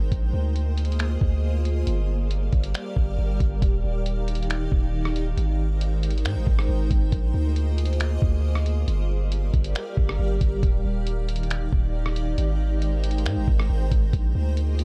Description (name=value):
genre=hip hop, atmospheric cloud-rap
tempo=137 BPM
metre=4/4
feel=half-time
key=Eb major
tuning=A4 = 440 Hz
part: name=granular cloud pad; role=sustained chords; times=0.0-14.8 s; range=Eb3 to G5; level=-34 LUFS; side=equal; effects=built-in reverb, sidechain pumping
part: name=long sustained 808-style bass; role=bass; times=0.0-14.8 s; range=Eb1 to Ab2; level=-26 LUFS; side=equal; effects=none
part: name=lo-fi sampler-style drum kit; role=drums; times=0.1-14.8 s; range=finger snaps, hi-hat, kick drum, rim click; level=-27 LUFS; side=equal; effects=none
room=little or no reverb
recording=dark, warm production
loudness=-24 LUFS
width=mono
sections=0.0-3.6 A section; 3.6-14.8 B section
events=none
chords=0.1 Bb9sus4; 1.9 Gm7; 3.6 Ebmaj9; 5.4 Abmaj9; 7.1 Bb9sus4; 8.9 Gm7; 10.6 Ebmaj9; 12.4 Abmaj9; 14.1 Bb9sus4